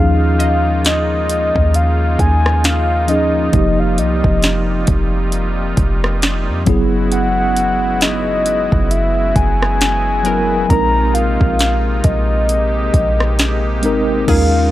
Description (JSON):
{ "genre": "contemporary R&B", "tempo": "67 BPM", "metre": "4/4", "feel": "swing 58% on 16ths", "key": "unclear", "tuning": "A4 = 440 Hz", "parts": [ { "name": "soft octave-layered synth lead", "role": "melody", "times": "0.0-14.7 s", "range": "Eb5 to Bb5", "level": "-18 LUFS", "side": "left 1 dB", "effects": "chorus" }, { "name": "mellow tine electric piano", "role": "accompaniment", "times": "0.0-14.7 s", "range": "F3 to Bb4", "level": "-20 LUFS", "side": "equal", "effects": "medium stereo tremolo" }, { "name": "pipe organ, strings celeste", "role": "sustained chords", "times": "0.0-14.7 s", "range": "C3 to G4", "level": "-24 LUFS", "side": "left 1 dB", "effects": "sidechain pumping" }, { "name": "warm 808-style bass", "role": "bass", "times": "0.0-14.7 s", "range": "F1 to F2", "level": "-17 LUFS", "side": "equal", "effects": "none" }, { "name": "smooth R&B drum kit", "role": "drums", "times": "0.4-14.5 s", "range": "crash cymbal, hi-hat, kick drum, rim click, snare drum", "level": "-17 LUFS", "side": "equal", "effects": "overdrive" }, { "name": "glassy wavetable pluck", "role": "texture", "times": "0.4-2.4, 10.3-14.7 s", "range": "Ab4 to Eb5", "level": "-28 LUFS", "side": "left 1 dB", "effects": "chorus, tape echo" } ], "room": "little or no reverb", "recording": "dry, gritty hardware recording", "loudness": "-13 LUFS", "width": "side -14 dB against mid", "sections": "0.0-14.3 A section", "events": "none", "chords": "0.0 Eb9sus4; 3.5 F9sus4; 6.7 Gb9sus4; 10.7 Bb9sus4", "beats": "0.85 1.75 2.64 | 3.54 4.43 5.33 6.22 | 7.12 8.01 8.91 9.80 | 10.70 11.60 12.49 13.39 | 14.28" }